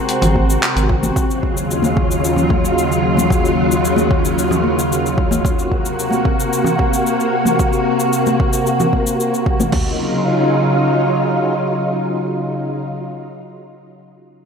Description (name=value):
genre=sunset chillout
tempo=112 BPM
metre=4/4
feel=straight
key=Eb dorian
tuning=A4 = 440 Hz
part: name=soft electric-piano-like synth keys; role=accompaniment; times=0.0-1.2 s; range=Ab3 to C5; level=-26 LUFS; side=left 2 dB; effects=chorus, tremolo, auto-pan, tape echo
part: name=soft string machine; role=sustained chords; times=0.0-12.9 s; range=Eb2 to Gb4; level=-16 LUFS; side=equal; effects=ensemble chorus
part: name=deep house drum kit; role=drums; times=0.1-9.7 s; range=cabasa, handclaps, hi-hat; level=-24 LUFS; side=left 2 dB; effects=overdrive
part: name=round analog bass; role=bass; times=0.2-1.1 s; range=Ab1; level=-17 LUFS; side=equal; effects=none
part: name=bongos and congas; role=percussion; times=0.2-9.7 s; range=none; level=-21 LUFS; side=left 2 dB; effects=none
part: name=deep house drum kit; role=drums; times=0.4-9.9 s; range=crash cymbal, kick drum, toms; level=-19 LUFS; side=equal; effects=overdrive
room=moderate lush hall reverb, RT60 1.6 s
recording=none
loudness=-14 LUFS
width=side -6 dB against mid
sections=0.0-9.7 A section; 9.7-14.0 B section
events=none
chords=0.0 Ab9; 1.2 Ebm9; 5.4 Gb; 9.7 Ebm9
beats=0.08 0.62 | 1.16 1.69 2.23 2.76 | 3.30 3.83 4.37 4.91 | 5.44 5.98 6.51 7.05 | 7.58 8.12 8.66 9.19 | 9.73 10.26 10.80 11.33 | 11.87 12.41